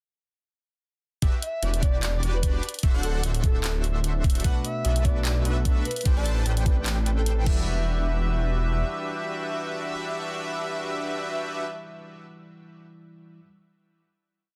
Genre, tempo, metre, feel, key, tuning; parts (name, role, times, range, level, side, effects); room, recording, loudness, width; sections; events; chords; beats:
future bass; 149 BPM; 4/4; swing 55% on 16ths, half-time; E minor; A4 = 440 Hz
airy dreamy lead; arpeggios; 1.2-11.6 s; D5 to A5; -40 LUFS; equal; chorus, sidechain pumping
big bright polysynth; riff; 1.2-11.6 s; D4 to A5; -35 LUFS; equal; chorus, sidechain pumping, delay
detuned saw bass; bass; 1.2-8.8 s; D1 to B1; -28 LUFS; equal; chorus, sidechain pumping
dubstep drum kit; drums; 1.2-7.6 s; crash cymbal, handclaps, hi-hat; -35 LUFS; equal
electronic kick drum; drums; 1.2-7.6 s; -25 LUFS; equal
breathy flute-like synth lead; melody; 1.4-7.6 s; A4 to E5; -37 LUFS; equal; chorus, sidechain pumping, digital delay
bell-like tine electric piano; accompaniment; 4.4-13.4 s; B2 to B5; -39 LUFS; equal; sidechain pumping, delay
little or no reverb; dense, heavily limited modern master; -26 LUFS; mono
1.2-7.7 drop; 7.7-10.9 final hit
drop 1.2-7.7
1.2 Em9; 2.6 D9; 4.4 Bm7; 5.9 Am11; 7.5 Em9
| 1.22 1.63 2.03 2.43 | 2.83 3.24 3.64 4.04 | 4.45 4.85 5.25 5.65 | 6.05 6.46 6.86 7.26 | 7.67 8.07 8.47 8.87 | 9.28 9.68 10.08 10.48